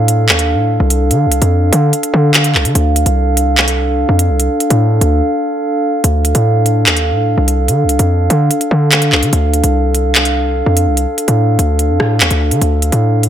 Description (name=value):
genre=hip hop, drill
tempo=146 BPM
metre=4/4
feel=half-time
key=D minor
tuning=A4 = 440 Hz
part: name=glass harmonica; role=sustained chords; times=0.0-13.3 s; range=D4 to F5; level=-16 LUFS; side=right 1 dB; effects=none
part: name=hard-hitting 808-style bass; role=bass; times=0.0-13.3 s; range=C2 to D3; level=-13 LUFS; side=equal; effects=none
part: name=drill drum kit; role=drums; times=0.1-13.3 s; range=handclaps, hi-hat, rim click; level=-14 LUFS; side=equal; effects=none
room=digital ambience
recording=none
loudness=-10 LUFS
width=side -10 dB against mid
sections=0.0-6.0 A section; 6.0-13.3 B section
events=break 5.2-6.0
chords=0.0 Dm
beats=0.29 0.70 | 1.11 1.52 1.93 2.34 | 2.75 3.16 3.58 3.99 | 4.40 4.81 5.22 5.63 | 6.04 6.45 6.86 7.27 | 7.68 8.10 8.51 8.92 | 9.33 9.74 10.15 10.56 | 10.97 11.38 11.79 12.21 | 12.62 13.03